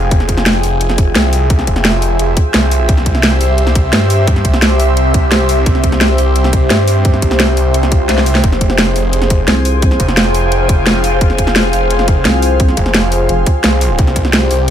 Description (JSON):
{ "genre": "dark technical drum and bass", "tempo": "173 BPM", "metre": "4/4", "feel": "straight", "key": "F harmonic minor", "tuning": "A4 = 440 Hz", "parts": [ { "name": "deep dark ambient pad", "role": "sustained chords", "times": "0.0-14.7 s", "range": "C4 to Ab5", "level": "-20 LUFS", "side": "equal", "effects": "chorus, built-in reverb, sidechain pumping" }, { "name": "snarling distorted saw bass", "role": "bass", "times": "0.0-14.7 s", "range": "F1 to G2", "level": "-14 LUFS", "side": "equal", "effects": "distortion, overdrive, sidechain pumping" }, { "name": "airy breathy pad", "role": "texture", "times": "0.0-14.7 s", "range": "G4 to F5", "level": "-18 LUFS", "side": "equal", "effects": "chorus, sidechain pumping" }, { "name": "drum and bass drum kit", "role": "drums", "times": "0.1-14.7 s", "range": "hi-hat, snare drum", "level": "-14 LUFS", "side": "equal", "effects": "overdrive, studio reverb" }, { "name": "electronic kick drum", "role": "drums", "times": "0.1-14.2 s", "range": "none", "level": "-13 LUFS", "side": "equal", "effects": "overdrive, studio reverb" }, { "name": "swell", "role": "sound effects", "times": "7.9-8.4 s", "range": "none", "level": "-29 LUFS", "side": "equal", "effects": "none" }, { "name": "vowel-sweep wobble bass", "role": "bass", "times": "9.5-10.0, 12.3-13.5 s", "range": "F1 to C2", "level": "-14 LUFS", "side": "equal", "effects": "chorus" } ], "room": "little or no reverb", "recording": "none", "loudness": "-10 LUFS", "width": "side -10 dB against mid", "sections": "0.0-14.7 A section", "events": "drum fill 8.1-8.4", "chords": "0.0 Fm; 2.9 C; 8.4 Fm; 14.0 C" }